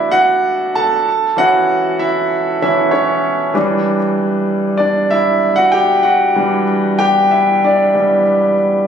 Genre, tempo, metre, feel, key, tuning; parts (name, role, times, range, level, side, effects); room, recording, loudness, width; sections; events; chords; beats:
pop; 96 BPM; 4/4; straight; E dorian; A4 = 440 Hz
clear concert grand piano; solo; 0.0-8.9 s; E3 to A5; -12 LUFS; equal; tape echo
moderate studio reverb, RT60 0.8 s; recorded on a phone in the room, club reverb, compression; -12 LUFS; side -8 dB against mid
0.0-8.9 A section
grand piano solo 0.0-8.9
0.0 Dadd9/E; 1.1 A/E; 3.6 Em7
0.12 0.75 | 1.37 2.00 2.62 3.25 | 3.87 4.50 5.12 5.75 | 6.37 7.00 7.62 8.24